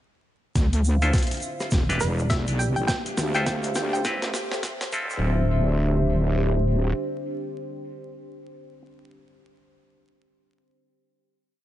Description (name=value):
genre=glitch hop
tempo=103 BPM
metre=4/4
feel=swing 60% on 16ths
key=D dorian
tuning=A4 = 440 Hz
part: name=dark analog pad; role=sustained chords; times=0.6-8.3 s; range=A3 to F5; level=-33 LUFS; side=equal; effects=chorus, sidechain pumping
part: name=wobble bass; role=bass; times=0.6-6.9 s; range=D1 to D2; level=-23 LUFS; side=equal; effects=chorus, overdrive
part: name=boom bap sampler-style drum kit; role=drums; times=0.6-4.9 s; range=hi-hat, rim click, snare drum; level=-30 LUFS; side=equal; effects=overdrive
part: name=electronic kick drum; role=drums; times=0.6-5.1 s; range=none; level=-25 LUFS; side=equal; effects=overdrive
part: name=egg shaker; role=percussion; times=0.6-5.2 s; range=none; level=-38 LUFS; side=right 3 dB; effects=none
part: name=deep dark ambient pad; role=texture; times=1.5-8.3 s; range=D4 to C5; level=-33 LUFS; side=equal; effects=chorus, built-in reverb, sidechain pumping
part: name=bright clav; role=stabs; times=1.0-8.8 s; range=C4 to C5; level=-31 LUFS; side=left 1 dB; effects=sidechain pumping, digital delay
part: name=woody wave-folded pluck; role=melody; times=2.0-4.0 s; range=B4 to G5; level=-30 LUFS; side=equal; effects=chorus, digital delay
room=light reverb, digital ambience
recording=vinyl crackle, high-pass filter, nothing above 10.5 kHz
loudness=-22 LUFS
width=side -13 dB against mid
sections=0.6-5.2 build; 5.2-7.5 final note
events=build-up 0.6-5.2; drum fill 0.6-5.2; filter sweep 0.6-5.2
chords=0.6 Dm9; 1.7 Em7; 2.9 Dm9; 4.1 Am7; 4.9 Dm9